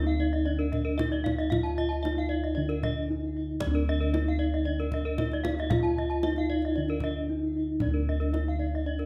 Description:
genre	Balinese gamelan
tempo	114 BPM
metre	4/4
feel	straight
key	D pelog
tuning	A4 = 440 Hz
part	gamelan-type bronze metallophone	melody	0.0-9.1 s	D4 to F4-30c	-33 LUFS	equal	none
part	gamelan-type bronze metallophone	arpeggios	0.0-9.1 s	Bb4-20c to A5-30c	-39 LUFS	equal	none
part	gamelan-type bossed gongs	bass	0.0-9.1 s	D2 to F4-30c	-32 LUFS	equal	none
part	gamelan-type bronze metallophone	arpeggios	0.1-8.9 s	D5 to F5-30c	-40 LUFS	equal	tape echo
part	kendang	percussion	0.6-9.1 s	none	-37 LUFS	equal	none
room	moderate recital hall reverb, RT60 1.4 s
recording	faint mains hum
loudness	-28 LUFS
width	mono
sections	0.0-9.1 A section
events	break 2.8-3.6, 7.0-7.8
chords	none

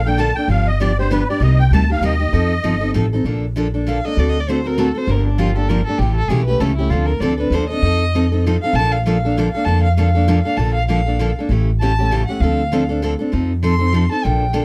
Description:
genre	acoustic string swing (jazz manouche)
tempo	196 BPM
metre	3/4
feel	swing 58% on 8ths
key	Bb major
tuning	A4 = 438 Hz
part	musette accordion	melody	0.0-2.9 s	B4 to A5	-24 LUFS	equal	none
part	upright bass	bass	0.0-14.6 s	G1 to F2	-20 LUFS	equal	none
part	picked steel-string acoustic guitar	accompaniment	0.1-14.6 s	C3 to A4	-22 LUFS	equal	none
part	warm violin	second line	3.9-14.6 s	D4 to C6	-25 LUFS	equal	none
room	light reverb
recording	dark, warm production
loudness	-17 LUFS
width	mono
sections	0.0-3.2 A section; 3.2-10.6 A section; 10.6-14.6 A section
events	accordion solo 0.0-3.2; violin solo 3.2-14.6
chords	0.0 Bbmaj7; 0.5 G7; 1.4 Cm7; 2.3 F7; 3.2 Bbmaj7; 4.2 D7; 5.1 Gm7; 6.0 A7; 6.9 Dm7; 7.8 F7; 8.7 Bbmaj7; 11.5 A7; 12.4 Dm7; 13.3 F7

